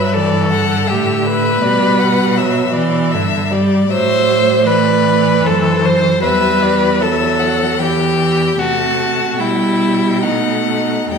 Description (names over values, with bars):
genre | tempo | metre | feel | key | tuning
classical, slow romantic movement for string quartet | 64-83 BPM | 3/4 | rubato | E minor | A4 = 440 Hz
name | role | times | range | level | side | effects
clear violin | melody | 0.0-11.2 s | C5 to A5 | -20 LUFS | left 7 dB | none
rich violin | second line | 0.0-11.2 s | D#4 to C5 | -16 LUFS | left 1 dB | none
rich viola | accompaniment | 0.0-11.2 s | D3 to A3 | -18 LUFS | right 1 dB | none
clear cello | bass | 0.0-11.2 s | E2 to C3 | -18 LUFS | right 4 dB | none
room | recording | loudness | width
wet recital hall reverb, RT60 1.6 s | recorded in a church or concert hall | -12 LUFS | side -6 dB against mid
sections
0.0-11.2 A section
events
none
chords
0.0 G; 1.6 G/B; 3.9 Am; 6.2 Em; 8.6 Am/C; 9.4 Em/B; 10.2 B7